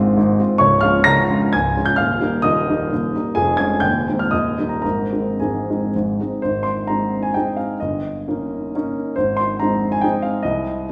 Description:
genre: classical, romantic triple-time dance for piano with dotted rhythms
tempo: 104-147 BPM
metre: 3/4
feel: rubato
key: Ab major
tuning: A4 = 440 Hz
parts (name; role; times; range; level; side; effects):
- warm grand piano; solo; 0.0-10.9 s; Db1 to Bb6; -19 LUFS; equal; none
room: wet recital hall reverb, RT60 1.8 s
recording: heard from further back in the room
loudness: -19 LUFS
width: mono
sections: 0.0-6.4 A section; 6.4-10.9 B section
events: none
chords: 0.0 Fm/Ab; 0.6 Db; 2.0 Eb; 3.4 Db/F; 3.8 Ab/Eb; 4.3 Eb; 4.8 Ab; 7.8 Eb7/G; 9.2 Ab

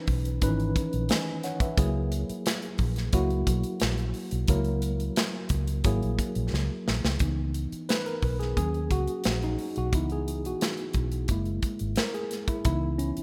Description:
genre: lush 1970s-style soul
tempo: 88 BPM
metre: 4/4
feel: straight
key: C# dorian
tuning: A4 = 440 Hz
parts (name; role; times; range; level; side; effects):
- tine electric piano; accompaniment; 0.0-13.2 s; D#3 to G#5; -33 LUFS; equal; none
- vintage muted fingered electric bass; bass; 0.1-13.2 s; F#1 to D#2; -31 LUFS; equal; none
- modern studio drum kit; drums; 0.1-13.2 s; hi-hat, kick drum, snare drum; -31 LUFS; equal; none
room: light reverb, small room reverb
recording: rough home demo mix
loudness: -28 LUFS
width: mono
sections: 0.0-7.2 A section; 7.2-13.2 B section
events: drum fill 6.5-7.2; tine electric piano solo 7.2-13.2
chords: 0.0 C#m9; 1.8 F#9; 7.2 C#m7; 8.6 D#m7; 9.9 C#m7; 11.3 F#9; 12.7 C#m7

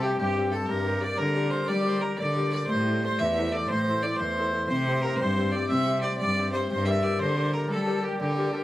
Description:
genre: celtic folk, Celtic slide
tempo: 120 BPM (dotted quarters)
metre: 12/8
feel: straight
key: unclear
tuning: A4 = 441 Hz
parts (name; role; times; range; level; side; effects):
- rich fiddle; melody; 0.0-8.6 s; G4 to E5; -30 LUFS; right 2 dB; none
- accordion; second line; 0.0-8.6 s; G4 to E5; -30 LUFS; left 1 dB; none
- Celtic harp; accompaniment; 0.0-8.6 s; D3 to E5; -29 LUFS; left 2 dB; slapback echo
- rich cello; bass; 0.0-8.6 s; E2 to G3; -29 LUFS; equal; none
room: little or no reverb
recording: recorded outdoors, with no room sound, lossy compression artefacts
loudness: -24 LUFS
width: side -15 dB against mid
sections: 0.0-8.6 A section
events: none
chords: 0.0 C; 2.7 Am; 4.7 C; 6.7 Gm

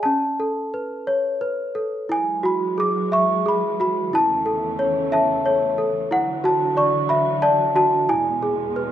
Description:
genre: children's music, lullaby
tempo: 60 BPM (dotted quarters)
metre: 6/8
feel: rubato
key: A major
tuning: A4 = 438 Hz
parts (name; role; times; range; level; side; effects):
- worn celesta; melody; 0.0-8.9 s; C#4 to D6; -19 LUFS; equal; none
- muted studio string section; sustained chords; 2.1-8.9 s; E2 to A3; -28 LUFS; right 4 dB; none
room: moderate recital hall reverb, RT60 1.6 s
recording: minimal, uncompressed stereo recording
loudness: -18 LUFS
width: side -11 dB against mid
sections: 0.0-2.1 A section; 2.1-8.9 B section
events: none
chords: 0.1 Aadd9; 2.1 Eadd9; 4.1 A/E; 6.1 Dadd9; 8.1 E

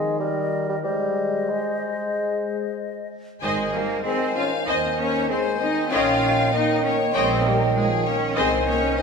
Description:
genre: quick classical-period movement for symphony orchestra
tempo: 96 BPM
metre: 4/4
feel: uneven beats, rubato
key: Ab major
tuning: A4 = 439 Hz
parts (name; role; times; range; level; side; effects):
- mellow clarinet; second line; 0.0-9.0 s; Ab4 to Db5; -32 LUFS; left 1 dB; none
- mellow silver concert flute; second line; 0.0-9.0 s; Eb5 to Ab5; -29 LUFS; left 1 dB; none
- mellow bassoon; accompaniment; 0.0-9.0 s; Eb3 to Ab3; -26 LUFS; right 1 dB; none
- warm French horn section; sustained chords; 0.0-9.0 s; Eb3 to Db4; -28 LUFS; left 4 dB; none
- clear chamber violin section; melody; 3.4-9.0 s; Ab4 to F5; -28 LUFS; left 6 dB; none
- rich symphonic violin section; second line; 3.4-8.6 s; Eb5 to Ab5; -31 LUFS; left 3 dB; none
- rich chamber viola section; accompaniment; 3.4-8.6 s; C5 to Eb5; -29 LUFS; right 1 dB; none
- bright studio cello section; bass; 3.4-9.0 s; Ab3 to F4; -26 LUFS; right 2 dB; none
- clear chamber double bass section; bass; 3.4-8.9 s; Ab1 to Eb2; -29 LUFS; right 3 dB; none
room: wet concert hall reverb, RT60 2.1 s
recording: minimal, uncompressed stereo recording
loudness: -20 LUFS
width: side -5 dB against mid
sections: 0.0-3.4 A section; 3.4-9.0 B section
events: none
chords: 0.2 Eb; 0.8 Ab; 5.9 Eb7/Bb; 8.4 Ab/C

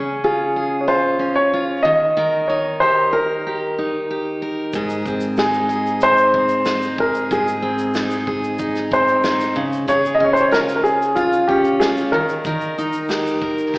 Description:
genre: acoustic pop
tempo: 93 BPM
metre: 4/4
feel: straight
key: Ab major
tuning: A4 = 440 Hz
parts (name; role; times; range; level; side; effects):
- picked steel-string acoustic guitar; accompaniment; 0.0-13.8 s; Ab2 to Bb4; -21 LUFS; equal; slapback echo
- warm upright piano; melody; 0.2-13.1 s; F4 to Eb5; -17 LUFS; equal; none
- natural country drum kit; drums; 4.7-13.8 s; kick drum, shaker, snare drum; -28 LUFS; equal; none
room: wet lush hall reverb, RT60 2.1 s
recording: live gig heard through the venue's PA, recital hall reverb, AM radio sound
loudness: -16 LUFS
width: side -26 dB against mid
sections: 0.0-13.8 A section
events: none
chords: 0.0 Db; 1.9 Eb; 4.7 Ab; 9.6 Db; 12.1 Eb

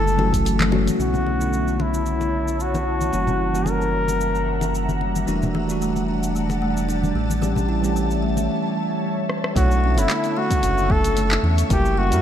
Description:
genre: sunset chillout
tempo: 112 BPM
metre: 4/4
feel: swing 54% on 16ths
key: B minor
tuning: A4 = 440 Hz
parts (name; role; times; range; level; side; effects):
- warm flugelhorn; melody; 0.0-5.0, 9.6-12.2 s; E4 to A#4; -24 LUFS; left 1 dB; vintage 12-bit sampler grit, tape echo
- ethereal airy pad; sustained chords; 0.0-12.2 s; C#3 to C#6; -27 LUFS; left 2 dB; ensemble chorus, built-in reverb, phaser
- buzzing kalimba; arpeggios; 0.0-0.9, 5.3-12.1 s; A3 to A4; -29 LUFS; right 3 dB; tape echo
- round analog bass; bass; 0.0-12.2 s; E1 to F#2; -23 LUFS; equal; none
- smooth R&B drum kit; drums; 0.1-12.2 s; handclaps, hi-hat, rim click, shaker; -29 LUFS; equal; none
- bell-like tine electric piano; accompaniment; 0.2-12.2 s; D3 to C#5; -26 LUFS; right 1 dB; auto-pan, tape echo
- congas; percussion; 0.2-8.5 s; none; -29 LUFS; left 2 dB; none
- electronic kick drum; drums; 0.3-0.4, 9.6-11.8 s; none; -22 LUFS; equal; none
room: moderate lush hall reverb, RT60 2.1 s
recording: dark, warm production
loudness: -19 LUFS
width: side -10 dB against mid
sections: 1.0-9.6 A section; 9.6-12.2 B section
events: filter sweep on ambient pad 1.0-9.6; break 8.5-9.6; drum fill 9.3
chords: 0.0 F#m7; 1.0 Bm11; 3.1 F#7b9; 5.3 Em11; 7.2 A7; 9.6 Bm11; 11.7 F#7b9

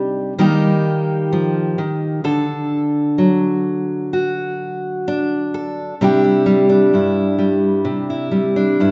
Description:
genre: folk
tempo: 64 BPM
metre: 4/4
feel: straight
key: unclear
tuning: A4 = 440 Hz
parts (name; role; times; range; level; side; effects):
- fingerpicked steel-string acoustic guitar; solo; 0.0-8.9 s; G2 to A4; -18 LUFS; equal; none
room: moderate scoring stage reverb, RT60 2.1 s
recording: recorded in a church or concert hall, nothing above 7.8 kHz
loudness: -18 LUFS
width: mono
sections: 0.0-6.0 A section; 6.0-8.9 B section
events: none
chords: 0.4 Eb; 2.2 D; 6.0 Cadd9

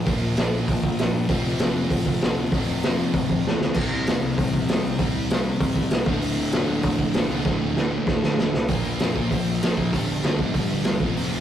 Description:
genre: punk rock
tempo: 195 BPM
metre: 4/4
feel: straight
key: unclear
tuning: A4 = 440 Hz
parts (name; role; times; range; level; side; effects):
- sludgy distorted guitar; riff; 0.0-11.4 s; D2 to C4; -25 LUFS; equal; overdrive
- thick fuzz guitar; riff; 0.0-11.4 s; D2 to C4; -34 LUFS; equal; none
- fuzz picked electric bass; bass; 0.1-11.4 s; D1 to Bb2; -31 LUFS; equal; overdrive
- raw garage drum kit; drums; 0.1-11.2 s; crash cymbal, hi-hat, kick drum, snare drum; -23 LUFS; equal; none
room: light reverb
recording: rough rehearsal-room recording, warm saturation, faint mains hum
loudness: -20 LUFS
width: side -10 dB against mid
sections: 0.0-8.7 A section; 8.7-11.4 B section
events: drum fill 3.4-3.8, 7.5-8.7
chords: 0.0 Bb5; 1.3 F5; 3.8 C5; 6.1 D5; 8.7 Bb5; 9.9 G5

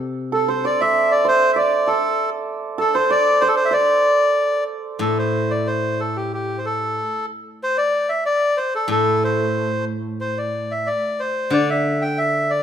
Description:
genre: chinese traditional, Chinese chamber ensemble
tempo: 89-98 BPM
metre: 2/4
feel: rubato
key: D shang mode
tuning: A4 = 438 Hz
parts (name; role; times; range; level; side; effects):
- steel-string zither; accompaniment; 0.0-0.6, 5.0-12.6 s; A2 to D3; -23 LUFS; equal; none
- melodica; melody; 0.3-12.6 s; G4 to G5; -19 LUFS; left 1 dB; none
- hammered dulcimer; second line; 0.3-6.2 s; A4 to E5; -22 LUFS; right 6 dB; none
room: moderate recital hall reverb, RT60 1.6 s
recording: minimal, uncompressed stereo recording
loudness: -17 LUFS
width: side -9 dB against mid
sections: 0.0-5.0 A section; 5.0-12.6 B section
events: none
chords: none

